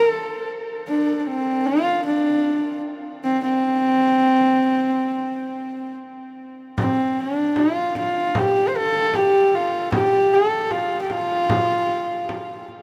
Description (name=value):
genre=mongolian traditional, Mongolian folk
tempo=76 BPM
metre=4/4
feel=straight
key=C zhi mode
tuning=A4 = 441 Hz
part: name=warm horsehead fiddle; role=melody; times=0.0-12.7 s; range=C4 to C5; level=-21 LUFS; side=equal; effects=none
part: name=frame drum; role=percussion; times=6.8-12.8 s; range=none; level=-31 LUFS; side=equal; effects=none
room=wet huge ambient reverb, RT60 8.4 s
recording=none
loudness=-21 LUFS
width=mono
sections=0.0-6.8 A section; 6.8-12.8 B section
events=none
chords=none